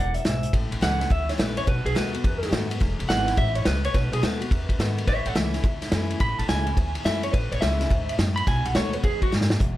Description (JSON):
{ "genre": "rockabilly", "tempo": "212 BPM", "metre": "4/4", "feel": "swing 64% on 8ths", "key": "unclear", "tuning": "A4 = 440 Hz", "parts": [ { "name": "electric guitar at the edge of break-up", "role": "melody", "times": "0.0-9.3 s", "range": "F#4 to B5", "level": "-28 LUFS", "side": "right 1 dB", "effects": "plate reverb, analog delay" }, { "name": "picked steel-string acoustic guitar", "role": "accompaniment", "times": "0.0-9.8 s", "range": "E2 to F#4", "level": "-32 LUFS", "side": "left 2 dB", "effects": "plate reverb" }, { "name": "upright bass", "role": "bass", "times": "0.0-9.8 s", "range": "E1 to G#2", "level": "-27 LUFS", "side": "equal", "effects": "none" }, { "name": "vintage drum kit", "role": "drums", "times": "0.1-9.7 s", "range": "hi-hat, kick drum, ride cymbal, snare drum", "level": "-25 LUFS", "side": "equal", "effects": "none" } ], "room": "light reverb", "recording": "none", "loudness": "-21 LUFS", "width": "side -15 dB against mid", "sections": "0.5-9.6 A section", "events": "drum fill 9.3", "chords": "0.0 E; 0.5 A; 1.7 B7; 2.8 E; 3.9 B7; 5.1 A; 8.5 B7", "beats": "0.25 | 0.53 0.82 1.10 1.39 | 1.67 1.95 2.24 2.52 | 2.80 3.09 3.37 3.66 | 3.94 4.22 4.51 4.79 | 5.07 5.36 5.64 5.92 | 6.21 6.49 6.77 7.06 | 7.34 7.62 7.91 8.19 | 8.47 8.76 9.04 9.32 | 9.61" }